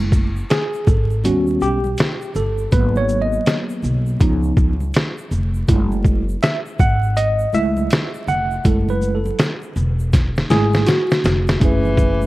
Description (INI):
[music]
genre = hip hop, jazz-hop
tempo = 81 BPM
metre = 4/4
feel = swing 63% on 16ths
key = F# dorian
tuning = A4 = 441 Hz
[part]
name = tine electric piano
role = accompaniment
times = 0.0-12.3 s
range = E#3 to F#5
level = -20 LUFS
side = right 1 dB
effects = medium stereo tremolo
[part]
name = upright bass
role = bass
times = 0.0-12.3 s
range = E1 to D#2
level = -20 LUFS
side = equal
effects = none
[part]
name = trip hop sampler-style drum kit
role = drums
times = 0.1-12.2 s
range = hi-hat, kick drum, shaker, snare drum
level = -18 LUFS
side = equal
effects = vintage 12-bit sampler grit
[part]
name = congas and egg shaker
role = percussion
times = 0.1-12.3 s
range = none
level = -32 LUFS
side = equal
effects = none
[part]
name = breathy tenor saxophone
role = melody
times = 11.6-12.3 s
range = E3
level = -20 LUFS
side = left 2 dB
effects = slapback echo
[sound]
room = light reverb, small room ambience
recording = dark, warm production, vinyl crackle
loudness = -16 LUFS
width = side -18 dB against mid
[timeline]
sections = 0.0-11.6 A section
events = tine electric piano solo 0.0-11.6; drum fill 10.1-11.6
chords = 0.0 F#m9; 1.2 D#aug7; 2.7 G#m7; 4.2 C#7; 5.7 F#m9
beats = 0.50 1.24 1.98 | 2.73 3.46 4.21 4.95 | 5.69 6.43 7.17 7.91 | 8.65 9.39 10.13 10.87 | 11.61